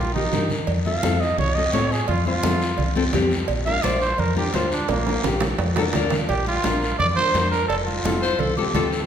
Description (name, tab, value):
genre	latin, cumbia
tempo	171 BPM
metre	4/4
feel	straight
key	Bb major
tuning	A4 = 440 Hz
part	growling trumpet	melody	0.0-8.5 s	Bb3 to F5	-24 LUFS	right 2 dB	none
part	fingered electric bass	bass	0.0-9.0 s	F1 to A2	-25 LUFS	left 1 dB	none
part	nylon-string guitar	accompaniment	0.2-9.0 s	C4 to F5	-26 LUFS	left 4 dB	none
part	congas	percussion	0.2-8.9 s	none	-28 LUFS	right 3 dB	none
part	guiro	percussion	0.3-9.1 s	none	-32 LUFS	left 3 dB	none
part	cowbell and timbales	percussion	0.7-8.9 s	none	-30 LUFS	right 5 dB	none
part	clear clarinet	second line	8.2-9.0 s	F4 to C5	-24 LUFS	left 4 dB	none
room	wet recital hall reverb, RT60 1.4 s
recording	recorded in a church or concert hall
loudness	-19 LUFS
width	side -8 dB against mid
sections	0.0-6.3 A section; 6.3-9.1 B section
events	drum fill 0.0-0.7, 4.9-6.3; trumpet solo 0.0-6.3; nylon-string guitar fill 5.6-6.3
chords	0.0 Eb; 0.7 F; 3.5 Bb; 7.7 F